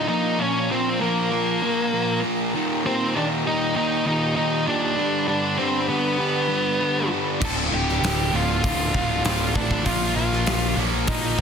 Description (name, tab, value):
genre	quiet-loud alternative rock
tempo	98 BPM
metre	4/4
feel	straight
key	unclear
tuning	A4 = 440 Hz
part	octave-fuzz lead guitar	melody	0.0-11.4 s	Bb3 to A4	-24 LUFS	equal	distortion, digital delay
part	rich chamber string section	sustained chords	0.0-11.4 s	F4 to B5	-33 LUFS	left 2 dB	none
part	fuzz guitar	riff	0.0-11.4 s	D2 to Bb3	-24 LUFS	equal	distortion
part	high-gain distorted guitar	riff	7.4-11.4 s	D2 to Bb3	-29 LUFS	right 2 dB	distortion
part	fuzz picked electric bass	bass	7.4-11.4 s	D1 to Bb1	-26 LUFS	equal	overdrive
part	big rock drum kit	drums	7.4-11.4 s	crash cymbal, hi-hat, kick drum, snare drum	-25 LUFS	equal	soft clipping on kick
room	light reverb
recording	dense, heavily limited modern master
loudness	-20 LUFS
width	side -6 dB against mid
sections	0.0-11.4 A section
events	none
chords	0.1 Bb5; 2.5 Eb; 5.0 G; 7.4 Dm; 9.9 Bbm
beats	| 0.09 0.70 1.31 1.93 | 2.54 3.15 3.76 4.37 | 4.98 5.59 6.20 6.81 | 7.42 8.03 8.64 9.25 | 9.86 10.47 11.08